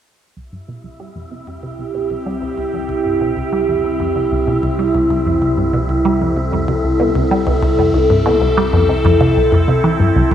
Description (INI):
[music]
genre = ambient, sequencer-driven space music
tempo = 95 BPM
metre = 4/4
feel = straight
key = C major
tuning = A4 = 440 Hz
[part]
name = evolving wavetable pad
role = sustained chords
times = 1.7-10.3 s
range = C4 to A4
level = -16 LUFS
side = equal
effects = phaser, built-in reverb
[part]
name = resonant blip pluck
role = riff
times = 0.4-10.3 s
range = C2 to G3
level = -18 LUFS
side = equal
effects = chorus, phaser, tape echo
[part]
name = fat analog bass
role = bass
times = 0.4-10.3 s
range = C2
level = -24 LUFS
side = equal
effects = tube saturation
[part]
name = wind-like tuned noise texture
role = texture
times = 1.0-10.3 s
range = E4 to E5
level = -28 LUFS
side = left 1 dB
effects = built-in reverb
[sound]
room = moderate plate reverb, RT60 2.8 s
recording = echo-heavy mix, cassette tape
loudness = -13 LUFS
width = side -10 dB against mid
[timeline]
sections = 0.4-10.3 A section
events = fade-in on synth arpeggio sound 0.4-10.3; fade-in on analog synth bass 0.4-10.3; fade-in on synth texture 0.4-10.3; filter sweep on ambient pad 0.4-10.3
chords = 0.4 C